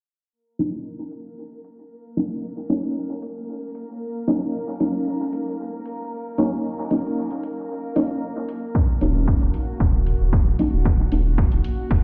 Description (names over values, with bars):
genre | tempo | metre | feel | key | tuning
dub techno | 114 BPM | 4/4 | straight | Eb minor | A4 = 440 Hz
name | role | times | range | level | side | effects
bubbling stepped-filter texture | texture | 0.9-12.0 s | Bb3 to Bb4 | -36 LUFS | equal | chorus, built-in reverb, sidechain pumping
deep mellow chord stab | stabs | 0.6-12.0 s | Gb3 to Eb4 | -27 LUFS | equal | chorus, phaser, sidechain pumping, dub echo
electronic hi-hat | drums | 0.6-11.8 s | none | -57 LUFS | equal | low-pass filter on hats, small room ambience, dub echo
electronic kick drum | drums | 8.7-12.0 s | none | -22 LUFS | equal | small room ambience
soft dub sub bass | bass | 9.0-12.0 s | Eb1 | -23 LUFS | equal | sidechain pumping
room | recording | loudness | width
light reverb | played on a big sound system in a bare room, large studio reverb, low-pass filter | -23 LUFS | mono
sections
0.3-12.0 A section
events
filter sweep on drum 0.3-12.0; filter sweep 0.3-12.0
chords
0.3 Ebm7